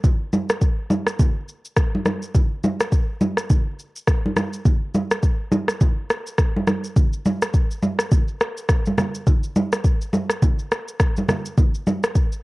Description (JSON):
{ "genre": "afrobeats", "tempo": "104 BPM", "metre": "4/4", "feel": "swing 58% on 16ths", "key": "none", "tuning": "none", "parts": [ { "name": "afro-pop drum kit", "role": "drums", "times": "0.0-12.4 s", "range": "kick drum, rim click, shaker", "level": "-19 LUFS", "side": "equal", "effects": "cassette tape" }, { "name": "congas", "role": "percussion", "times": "0.0-12.0 s", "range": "none", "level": "-22 LUFS", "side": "right 1 dB", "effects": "none" } ], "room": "light reverb, digital ambience", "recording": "home recording on cassette", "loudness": "-19 LUFS", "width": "side -22 dB against mid", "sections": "0.0-7.0 A section; 7.0-12.4 B section", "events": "none", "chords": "none" }